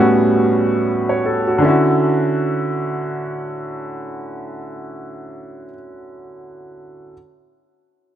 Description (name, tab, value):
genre	R&B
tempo	free time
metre	none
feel	none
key	D major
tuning	A4 = 440 Hz
part	warm grand piano	accompaniment	0.0-7.1 s	A2 to C#5	-17 LUFS	equal	none
room	moderate plate reverb, RT60 3.2 s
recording	none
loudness	-15 LUFS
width	side -10 dB against mid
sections	0.0-1.6 A section; 1.6-4.6 B section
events	none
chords	0.0 A13; 1.6 Dmaj9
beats	free time